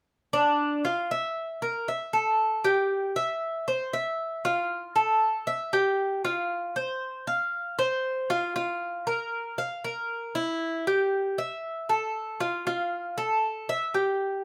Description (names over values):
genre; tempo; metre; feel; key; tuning
latin; 117 BPM; 4/4; straight; unclear; A4 = 439 Hz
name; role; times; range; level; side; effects
Cuban tres; solo; 0.3-14.4 s; D4 to F5; -28 LUFS; equal; none
room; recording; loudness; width
moderate studio reverb, RT60 0.6 s; none; -28 LUFS; mono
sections
0.3-4.4 A section; 4.4-14.4 B section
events
none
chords
none